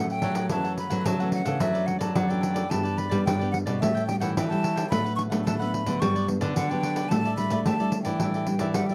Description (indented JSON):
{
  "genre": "samba and choro",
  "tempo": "109 BPM",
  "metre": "4/4",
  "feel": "straight",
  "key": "unclear",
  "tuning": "A4 = 440 Hz",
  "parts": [
    { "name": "breathy hollow jazz flute", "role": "melody", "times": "0.0-8.9 s", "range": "E5 to C#6", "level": "-33 LUFS", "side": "equal", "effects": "none" },
    { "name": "cavaquinho", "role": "accompaniment", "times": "0.0-8.9 s", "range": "D4 to G5", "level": "-38 LUFS", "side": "equal", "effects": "none" },
    { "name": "nylon-string guitar", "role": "accompaniment", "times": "0.0-8.9 s", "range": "F#2 to F#4", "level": "-32 LUFS", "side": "equal", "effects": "none" },
    { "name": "nylon-string guitar", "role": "bass", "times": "0.0-8.9 s", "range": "B2 to A3", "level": "-30 LUFS", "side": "equal", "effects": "none" },
    { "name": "pandeiro", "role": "percussion", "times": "0.1-8.9 s", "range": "none", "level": "-34 LUFS", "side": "equal", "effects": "none" }
  ],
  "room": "little or no reverb",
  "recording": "dark, warm production",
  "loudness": "-26 LUFS",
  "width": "mono",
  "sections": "0.5-8.9 A section",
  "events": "none",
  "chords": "0.0 Dmaj7; 0.5 F#m7; 1.6 Bm7/F#; 2.7 Em7/G; 3.8 A6; 4.9 D6/A; 6.0 Gmaj7; 7.1 A7sus4"
}